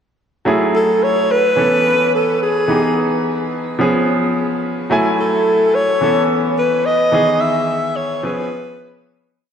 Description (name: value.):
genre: R&B.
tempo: 108 BPM.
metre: 4/4.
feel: swing 60% on 16ths.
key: F# dorian.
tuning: A4 = 442 Hz.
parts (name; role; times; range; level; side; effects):
bright concert grand piano; accompaniment; 0.5-9.4 s; D#3 to G#5; -17 LUFS; equal; shimmer reverb.
breathy alto saxophone; melody; 0.8-9.1 s; G#4 to E5; -16 LUFS; equal; shimmer reverb, tape echo.
room: wet lush hall reverb, RT60 2.6 s.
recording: dreamy mix soaked in reverb.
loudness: -14 LUFS.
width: side -8 dB against mid.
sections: 0.5-9.3 verse.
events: fade-out 7.1-9.3.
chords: 0.5 F#m9; 1.6 B9sus4; 2.7 Emaj7; 3.8 C#7; 4.9 F#m9; 6.0 B9sus4; 7.1 Emaj7; 8.2 C#7.